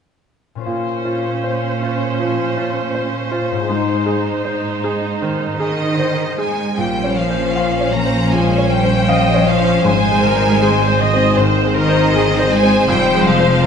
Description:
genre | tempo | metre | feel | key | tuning
cinematic, emotional film score for orchestra | 79 BPM | 4/4 | rubato | unclear | A4 = 438 Hz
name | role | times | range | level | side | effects
concert harp | arpeggios | 0.6-13.7 s | F2 to C5 | -22 LUFS | left 8 dB | none
bright baby grand piano | accompaniment | 0.7-13.7 s | F2 to F5 | -20 LUFS | equal | none
rich symphonic viola section | accompaniment | 0.7-13.7 s | Db4 to Eb5 | -21 LUFS | right 2 dB | none
rich symphonic cello section | bass | 0.7-13.7 s | Ab2 to Bb3 | -21 LUFS | right 3 dB | none
warm symphonic violin section | melody | 5.6-13.7 s | Eb5 to Bb5 | -21 LUFS | left 1 dB | none
clear chamber violin section | second line | 6.8-13.7 s | C4 to C5 | -20 LUFS | left 3 dB | none
rich studio double bass section | bass | 6.8-13.7 s | F1 to Bb1 | -21 LUFS | right 4 dB | none
room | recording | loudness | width
moderate scoring stage reverb, RT60 1.9 s | nothing above 10.8 kHz | -14 LUFS | side -7 dB against mid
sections
0.7-6.8 A section; 6.8-13.7 B section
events
none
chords
0.7 Bbmadd9; 3.7 Ab; 6.8 Bbmadd9; 9.9 Ab; 12.9 Fm

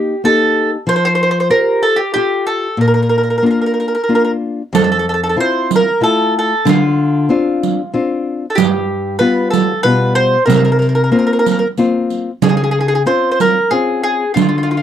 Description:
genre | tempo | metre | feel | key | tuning
italian folk, Italian serenade | 94 BPM | 3/4 | straight | Bb major, F major from 4.7 s | A4 = 440 Hz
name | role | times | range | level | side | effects
mandolin | melody | 0.0-14.8 s | F4 to C5 | -14 LUFS | right 1 dB | none
nylon-string guitar | accompaniment | 0.0-14.8 s | F2 to C5 | -16 LUFS | left 3 dB | none
riq | percussion | 4.7-14.7 s | none | -16 LUFS | right 11 dB | none
room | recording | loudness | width
light reverb | dry, close 1970s-style studio recording | -12 LUFS | side -10 dB against mid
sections
0.0-4.7 A section; 4.7-14.8 B section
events
none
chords
0.0 Eb; 0.9 Fadd9; 2.8 Bb; 4.7 Fmaj7; 6.7 Dm7; 8.6 G7; 10.5 C7sus4; 12.4 Dbmaj7

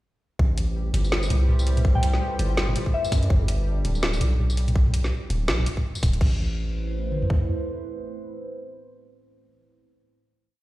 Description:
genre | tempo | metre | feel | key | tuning
half-time drum and bass | 165 BPM | 4/4 | swing 58% on 16ths, half-time | A minor | A4 = 440 Hz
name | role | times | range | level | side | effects
dark analog pad | sustained chords | 0.7-9.9 s | G3 to C5 | -34 LUFS | right 1 dB | chorus, phaser, sidechain pumping
long sustained 808-style bass | bass | 0.4-7.3 s | D1 to F#2 | -23 LUFS | equal | none
drum and bass drum kit | drums | 0.4-7.4 s | kick drum, toms | -21 LUFS | equal | none
pulsing gated texture | texture | 0.6-4.8 s | G3 to G4 | -37 LUFS | left 1 dB | chorus, built-in reverb
drum and bass drum kit | drums | 0.6-6.3 s | crash cymbal, hi-hat, snare drum, tambourine, toms | -28 LUFS | equal | none
soft synth bell | melody | 2.0-3.3 s | E5 to G5 | -31 LUFS | left 3 dB | chorus, vintage 12-bit sampler grit, digital delay
room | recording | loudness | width
light reverb | played on a big sound system in a bare room, large studio reverb | -21 LUFS | side -17 dB against mid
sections
0.4-6.2 drop; 6.2-9.1 final chord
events
drop 0.4-6.2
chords
0.4 Am; 3.3 G; 6.2 Am

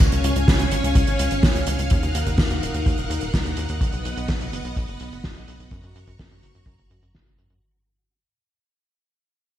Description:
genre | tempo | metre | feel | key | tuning
italo disco | 126 BPM | 4/4 | straight | unclear | A4 = 440 Hz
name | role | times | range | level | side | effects
string machine, full ensemble | sustained chords | 0.0-7.6 s | B3 to Db6 | -27 LUFS | equal | ensemble chorus
tight sequencer bass | bass | 0.0-7.6 s | Eb1 to Gb2 | -26 LUFS | equal | tube saturation
kick drum | drums | 0.0-7.2 s | none | -22 LUFS | equal | none
soft-mallet drum kit | drums | 0.1-7.6 s | hi-hat, snare drum | -25 LUFS | equal | low-pass filter on hats, low-pass filter on snare, low-pass filter on perc, low-pass filter on room, gated reverb
room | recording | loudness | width
light reverb, small room reverb | bright 1980s-style digital production, vinyl crackle, faint mains hum | -19 LUFS | side -12 dB against mid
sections
0.0-7.6 A section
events
fade-out 0.0-7.6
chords
0.0 Db; 1.9 Ebmadd9; 3.8 B; 5.7 Gb

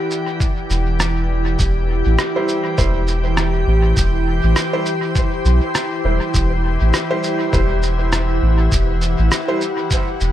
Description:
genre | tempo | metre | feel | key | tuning
ambient dub | 101 BPM | 4/4 | swing 57% on 16ths | unclear | A4 = 436 Hz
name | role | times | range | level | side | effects
soft additive organ-like pad | sustained chords | 0.0-10.3 s | E3 to G5 | -21 LUFS | left 1 dB | ensemble chorus, built-in reverb
electronic shaker and rim click | drums | 0.1-10.3 s | none | -25 LUFS | right 1 dB | dub echo
electronic kick drum | drums | 0.4-10.0 s | none | -19 LUFS | equal | none
soft dub sub bass | bass | 0.7-10.3 s | E1 to B1 | -17 LUFS | equal | none
warm upright piano | stabs | 2.4-9.6 s | G3 to C5 | -24 LUFS | right 2 dB | dub echo
room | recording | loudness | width
light reverb, digital ambience | none | -15 LUFS | side -12 dB against mid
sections
0.0-10.3 A section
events
none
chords
0.0 Em7; 1.6 C/E

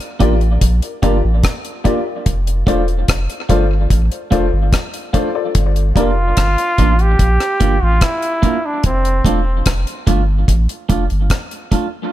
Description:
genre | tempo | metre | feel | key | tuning
dub reggae | 73 BPM | 4/4 | straight | unclear | A4 = 440 Hz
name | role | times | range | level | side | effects
deep reggae drum kit | drums | 0.0-11.9 s | hi-hat, kick drum, rim click | -16 LUFS | equal | none
clean electric guitar | accompaniment | 0.2-11.9 s | A3 to F4 | -22 LUFS | right 4 dB | tape echo
dark upright piano | stabs | 0.2-6.1 s | F4 to D5 | -22 LUFS | left 6 dB | tape echo
warm sub bass | bass | 0.2-11.3 s | E1 to Bb1 | -15 LUFS | equal | none
brilliant trombone | melody | 6.0-9.4 s | C4 to G4 | -19 LUFS | right 1 dB | tape echo
room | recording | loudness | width
small room ambience | none | -13 LUFS | side -14 dB against mid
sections
0.0-12.1 A section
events
break 0.0-5.5, 8.8-12.1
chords
0.0 Gm7; 2.3 F6; 5.5 Gm7; 8.8 F6

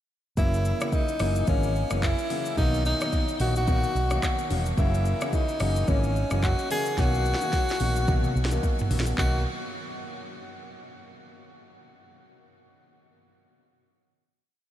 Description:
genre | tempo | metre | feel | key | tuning
afrobeats | 109 BPM | 4/4 | swing 58% on 16ths | B major | A4 = 445 Hz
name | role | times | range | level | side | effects
warm tenor saxophone | melody | 0.4-9.4 s | C#4 to G#4 | -29 LUFS | equal | diffuse ambient delay
warm grand piano | accompaniment | 0.4-9.4 s | B2 to A#3 | -32 LUFS | left 2 dB | lush chorus
fingered electric bass | bass | 0.4-9.4 s | E1 to B1 | -26 LUFS | equal | none
afro-pop drum kit | drums | 0.4-9.3 s | handclaps, hi-hat, kick drum, rim click, shaker, snare drum, toms | -28 LUFS | equal | vintage 12-bit sampler grit
room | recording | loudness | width
moderate huge ambient reverb, RT60 7.4 s | dreamy mix soaked in reverb | -23 LUFS | side -12 dB against mid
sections
0.4-9.2 chorus; 9.2-11.4 final chord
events
drum fill 7.0-9.2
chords
0.4 F#7; 2.6 Bmaj7; 4.8 F#7; 7.0 Bmaj7

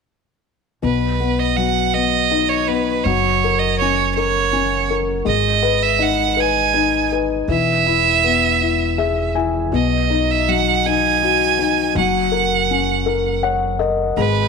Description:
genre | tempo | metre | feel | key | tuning
pop | 54 BPM (dotted quarters) | 6/8 | straight | B major | A4 = 439 Hz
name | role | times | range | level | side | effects
bright violin | melody | 0.8-14.5 s | B4 to G#5 | -18 LUFS | right 11 dB | none
felt-muted upright piano | accompaniment | 0.8-14.5 s | B2 to G#5 | -19 LUFS | left 8 dB | none
upright bass | bass | 0.8-14.5 s | E1 to B1 | -24 LUFS | right 2 dB | none
room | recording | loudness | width
wet echo chamber reverb, RT60 1.8 s | 1960s-style stereo with parts hard left and right | -15 LUFS | side -5 dB against mid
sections
0.8-14.5 A section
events
felt piano fill 8.6-9.7, 13.1-14.2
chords
0.8 B; 3.1 F#; 5.3 G#m; 7.5 E; 9.7 B; 12.0 F#

